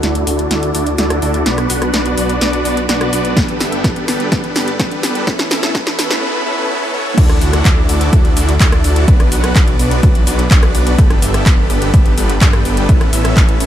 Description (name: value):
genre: EDM, festival progressive house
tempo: 126 BPM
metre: 4/4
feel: straight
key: D major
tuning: A4 = 440 Hz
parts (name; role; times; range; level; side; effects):
- supersaw chords; riff; 0.0-13.7 s; B3 to F#5; -17 LUFS; equal; sidechain pumping, low-pass filter, ping-pong delay
- wide detuned saw bass; bass; 0.0-13.7 s; G1 to G2; -18 LUFS; equal; chorus, sidechain pumping
- big-room dance drum kit; drums; 0.0-13.7 s; crash cymbal, handclaps, hi-hat, rim click, snare drum; -19 LUFS; equal; studio reverb
- electronic kick drum; drums; 3.4-13.5 s; none; -12 LUFS; equal; overdrive, studio reverb
room: digital ambience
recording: high-pass filter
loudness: -11 LUFS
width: side -11 dB against mid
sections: 0.0-7.2 A section; 7.2-13.7 B section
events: build-up 0.0-7.2; drum fill 0.0-6.2; filter sweep on supersaw synth 0.0-7.2; filter sweep 0.0-7.2; drop 7.2-13.7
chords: 0.0 Dadd9; 1.5 Bm; 3.4 Gadd9; 5.3 Aadd9; 7.2 Dadd9; 9.1 Bm; 11.0 Gadd9; 12.9 Aadd9